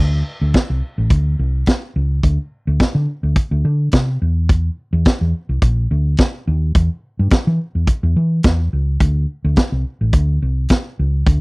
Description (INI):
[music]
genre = disco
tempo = 106 BPM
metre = 4/4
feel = straight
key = unclear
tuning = A4 = 439 Hz
[part]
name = hollow-body short-scale fingered electric bass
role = bass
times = 0.0-11.4 s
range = A1 to E3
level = -16 LUFS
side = equal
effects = none
[part]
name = vintage drum kit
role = drums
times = 0.5-11.4 s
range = hi-hat, kick drum, snare drum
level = -14 LUFS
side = equal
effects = none
[sound]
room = little or no reverb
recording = dry, close 1970s-style studio recording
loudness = -15 LUFS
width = side -29 dB against mid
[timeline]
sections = 0.0-11.4 A section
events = none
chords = none